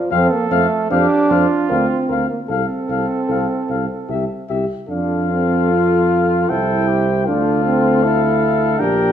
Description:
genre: classical, brass quintet.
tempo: 76 BPM.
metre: 3/4.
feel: rubato.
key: F major.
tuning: A4 = 440 Hz.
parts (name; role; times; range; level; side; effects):
mellow trombone; accompaniment; 0.0-9.1 s; F3 to F4; -19 LUFS; right 2 dB; none.
dark trumpet; melody; 0.1-9.1 s; E5 to G5; -22 LUFS; left 7 dB; none.
mellow trumpet; second line; 0.1-9.1 s; F4 to Bb4; -24 LUFS; right 4 dB; none.
warm French horn; accompaniment; 0.1-9.1 s; G4 to C5; -23 LUFS; left 6 dB; none.
mellow tuba; bass; 0.1-9.1 s; Bb1 to F2; -21 LUFS; right 2 dB; none.
room: wet recital hall reverb, RT60 1.5 s.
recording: minimal, uncompressed stereo recording.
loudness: -15 LUFS.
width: side -9 dB against mid.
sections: 0.0-9.1 A section.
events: none.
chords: 0.1 F; 1.7 Bb/D; 2.5 F/C; 4.1 C; 4.9 F; 6.5 C; 7.3 Dm.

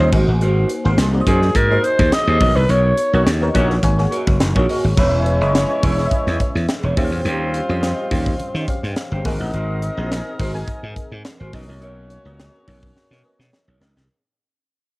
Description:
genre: polished 1980s jazz-funk pop.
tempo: 105 BPM.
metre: 4/4.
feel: swing 54% on 16ths.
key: unclear.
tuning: A4 = 445 Hz.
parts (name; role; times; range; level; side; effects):
growling alto saxophone; melody; 0.0-3.3 s; G#4 to D#5; -19 LUFS; equal; cassette tape.
FM electric piano; accompaniment; 0.0-14.1 s; G3 to G#5; -26 LUFS; left 1 dB; phaser, analog chorus, cassette tape.
mellow electric guitar; riff; 0.0-14.0 s; C#4 to D#5; -25 LUFS; right 1 dB; wide subtle chorus, cassette tape.
slap bass; bass; 0.0-14.1 s; E1 to D#3; -18 LUFS; equal; none.
crisp fusion drum kit; drums; 0.1-14.1 s; crash cymbal, hi-hat, kick drum, snare drum; -21 LUFS; equal; cassette tape.
mellow horn section; second line; 3.1-13.8 s; G3 to D#5; -25 LUFS; left 1 dB; cassette tape, analog delay.
room: light reverb, studio reverb.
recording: home recording on cassette.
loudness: -15 LUFS.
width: side -22 dB against mid.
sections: 0.0-5.0 A section; 5.0-14.1 B section.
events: band accent 2.7-5.0; fade-out 5.0-14.1; drum fill 13.0-14.1.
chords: 0.1 G#9; 2.4 Bmaj9; 3.8 G#9sus4; 5.0 E6; 7.0 D#13; 9.2 G#9; 11.5 Bmaj9.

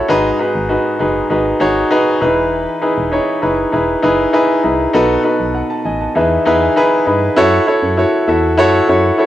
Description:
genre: 1980s-style pop.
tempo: 99 BPM.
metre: 4/4.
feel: straight.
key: F# dorian.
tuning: A4 = 440 Hz.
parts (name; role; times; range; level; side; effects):
clear baby grand piano; accompaniment; 0.0-9.3 s; G#2 to B5; -12 LUFS; equal; cassette tape, plate reverb.
solid FM bass; bass; 0.0-9.1 s; E1 to G2; -22 LUFS; equal; none.
room: moderate studio reverb, RT60 0.6 s.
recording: home recording on cassette.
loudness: -12 LUFS.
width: side -13 dB against mid.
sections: 0.0-7.4 A section; 7.4-9.3 B section.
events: grand piano fill 5.6-7.4.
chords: 0.1 G#m7; 2.2 Emaj7; 4.9 B7; 6.2 Emaj7; 7.4 F#m7.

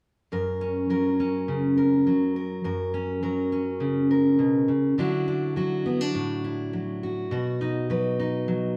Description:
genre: folk.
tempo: 103 BPM.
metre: 4/4.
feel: straight.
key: F# major.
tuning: A4 = 438 Hz.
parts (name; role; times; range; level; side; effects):
fingerpicked steel-string acoustic guitar; accompaniment; 0.3-8.8 s; F#2 to B4; -25 LUFS; equal; none.
room: moderate studio reverb, RT60 0.8 s.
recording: band playing live in one room.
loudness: -25 LUFS.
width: mono.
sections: 0.3-8.8 A section.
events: none.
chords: 0.3 F#; 5.0 Dadd9; 7.3 B.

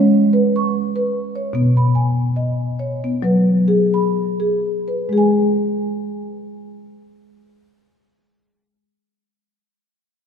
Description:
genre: world meditative.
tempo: 60-78 BPM.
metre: 4/4.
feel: swing 55% on 16ths.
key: unclear.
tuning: A4 = 440 Hz.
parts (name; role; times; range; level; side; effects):
marimba with soft mallets; arpeggios; 0.0-8.9 s; B2 to C#6; -16 LUFS; equal; none.
room: wet church reverb, RT60 3.0 s.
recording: lossy compression artefacts.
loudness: -16 LUFS.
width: side -7 dB against mid.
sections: 0.0-5.1 A section; 5.1-9.1 B section.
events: slowing down 0.0-5.1.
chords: 0.0 C#5; 1.5 B5; 5.1 N.C..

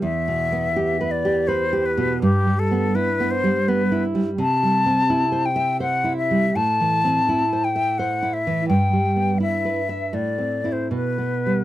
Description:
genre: romantic duo for flute and classical guitar.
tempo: 83 BPM.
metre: 3/4.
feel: uneven beats, rubato.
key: unclear.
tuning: A4 = 439 Hz.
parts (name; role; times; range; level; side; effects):
bright silver concert flute; melody; 0.0-11.6 s; G4 to A5; -22 LUFS; left 3 dB; none.
nylon-string guitar; accompaniment; 0.0-11.6 s; E2 to E5; -21 LUFS; right 2 dB; none.
room: little or no reverb.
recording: dry, close 1970s-style studio recording.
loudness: -18 LUFS.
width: side -14 dB against mid.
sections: 0.0-11.6 A section.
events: none.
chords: 0.0 Em; 2.2 Em/G; 4.4 C; 6.6 Am; 8.7 Em/G; 10.1 Amadd11; 10.9 Em/B (rootless).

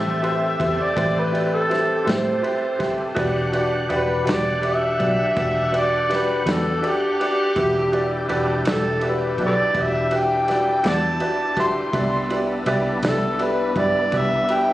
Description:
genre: slow blues.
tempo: 55 BPM (dotted quarters).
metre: 12/8.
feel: straight.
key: E minor.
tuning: A4 = 440 Hz.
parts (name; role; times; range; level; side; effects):
overdriven harmonica; melody; 0.0-14.7 s; G4 to C6; -22 LUFS; left 1 dB; none.
clear upright piano; accompaniment; 0.0-14.7 s; E4 to E5; -24 LUFS; right 1 dB; none.
overdriven tonewheel organ; sustained chords; 0.0-14.7 s; B3 to F#5; -27 LUFS; left 1 dB; slow rotary speaker, chorus vibrato.
vintage muted fingered electric bass; bass; 0.0-14.7 s; E1 to A2; -26 LUFS; equal; none.
warm soul drum kit; drums; 0.2-14.7 s; kick drum, ride cymbal, snare drum; -30 LUFS; equal; none.
room: light reverb, small room ambience.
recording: recorded on a phone in the room, studio reverb.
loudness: -18 LUFS.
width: side -15 dB against mid.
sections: 0.0-14.7 A section.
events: harmonica solo 0.0-14.7.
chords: 0.0 Am9; 3.2 Em9; 11.9 Cmaj7.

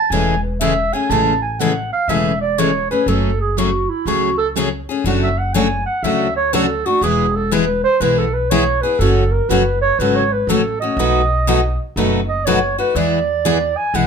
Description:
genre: acoustic string swing (jazz manouche).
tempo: 121 BPM.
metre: 4/4.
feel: swing 66% on 8ths.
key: A major.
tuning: A4 = 440 Hz.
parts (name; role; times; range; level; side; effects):
breathy clarinet; second line; 0.0-14.1 s; E4 to A5; -18 LUFS; right 2 dB; none.
picked plugged-in steel-string acoustic guitar; accompaniment; 0.1-14.1 s; B2 to C#5; -23 LUFS; right 8 dB; none.
picked steel-string acoustic guitar; accompaniment; 0.1-14.1 s; B2 to G#4; -20 LUFS; left 7 dB; none.
upright bass; bass; 0.1-14.1 s; E1 to E2; -22 LUFS; equal; none.
room: moderate club reverb, RT60 0.7 s.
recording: minimal, uncompressed stereo recording.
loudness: -14 LUFS.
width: side -6 dB against mid.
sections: 0.0-1.1 A section; 1.1-14.1 A section.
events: clarinet solo 0.0-14.1.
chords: 0.0 Amaj7; 3.1 F#madd9; 5.0 Dmaj7/F#; 7.0 E; 9.0 F#m; 11.0 B7; 13.0 E.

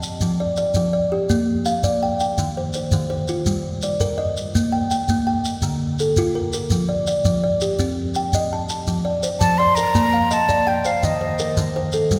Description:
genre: southern african traditional, mbira-style interlocking cycle.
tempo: 111 BPM (dotted quarters).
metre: 12/8.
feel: straight.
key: F mixolydian.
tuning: A4 = 440 Hz.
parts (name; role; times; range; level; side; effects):
kalimba; arpeggios; 0.0-12.2 s; D3 to A5; -23 LUFS; equal; none.
shekere; percussion; 0.0-12.2 s; none; -27 LUFS; equal; none.
breathy mellow concert flute; melody; 9.4-11.6 s; Eb5 to C6; -22 LUFS; equal; none.
room: wet cathedral reverb, RT60 4.2 s.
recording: recorded in a church or concert hall.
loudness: -21 LUFS.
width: mono.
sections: 0.0-8.9 A section; 8.9-12.2 B section.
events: none.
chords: 0.2 F; 1.3 Bb; 2.4 Eb; 3.5 Gm; 4.5 Gm/Bb; 5.6 Dm; 6.7 Bb6/F; 7.8 Cm; 8.9 F; 9.9 Bb; 11.0 Eb.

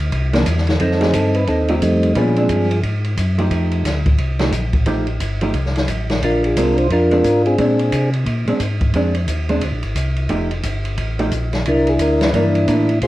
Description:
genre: soul jazz organ trio.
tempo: 177 BPM.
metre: 4/4.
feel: swing 62% on 8ths.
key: unclear.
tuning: A4 = 440 Hz.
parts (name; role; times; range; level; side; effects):
mellow tonewheel organ; bass; 0.0-13.1 s; F1 to C3; -20 LUFS; equal; chorus vibrato, slow rotary speaker, transformer saturation.
open jazz drum kit; drums; 0.0-13.1 s; hi-hat, kick drum, ride cymbal, snare drum; -23 LUFS; equal; none.
vintage hollow-body jazz guitar; accompaniment; 0.3-12.9 s; E3 to G4; -20 LUFS; right 1 dB; none.
percussive tonewheel organ; melody; 0.8-2.8, 6.2-8.1, 11.7-13.1 s; F3 to C5; -16 LUFS; equal; slow rotary speaker.
room: moderate studio reverb, RT60 0.5 s.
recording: worn, warbling old tape, cassette tape, warbly pitch drift.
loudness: -15 LUFS.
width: side -16 dB against mid.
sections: 0.8-13.1 A section.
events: none.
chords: 0.1 C9; 0.8 F9; 2.2 Bb9; 3.5 F9; 6.2 Bb9; 10.3 F9; 11.7 C9.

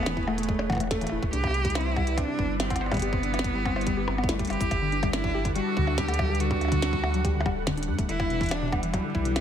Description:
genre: IDM.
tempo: 142 BPM.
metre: 4/4.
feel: straight.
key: unclear.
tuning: A4 = 443 Hz.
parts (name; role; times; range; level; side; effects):
clear cello; melody; 0.0-9.4 s; G3 to G4; -30 LUFS; right 2 dB; vintage 12-bit sampler grit, ping-pong delay.
phased analog pad; sustained chords; 0.0-9.4 s; A2 to F#5; -33 LUFS; equal; phaser, chorus.
warbly dusty pluck; arpeggios; 0.0-9.4 s; B2 to C5; -32 LUFS; left 4 dB; chorus, ping-pong delay.
warm sub bass; bass; 0.0-9.4 s; D1 to G2; -30 LUFS; equal; none.
glitchy drum kit; drums; 0.0-9.4 s; cabasa, hi-hat, percussion blips, snare drum; -32 LUFS; left 1 dB; none.
electronic kick drum; drums; 0.2-9.2 s; none; -31 LUFS; equal; none.
room: light reverb.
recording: none.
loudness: -24 LUFS.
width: side -9 dB against mid.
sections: 0.0-9.4 A section.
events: none.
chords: 0.0 Amaj7; 1.3 Cmaj7; 4.7 Gmaj7; 8.1 Emadd9.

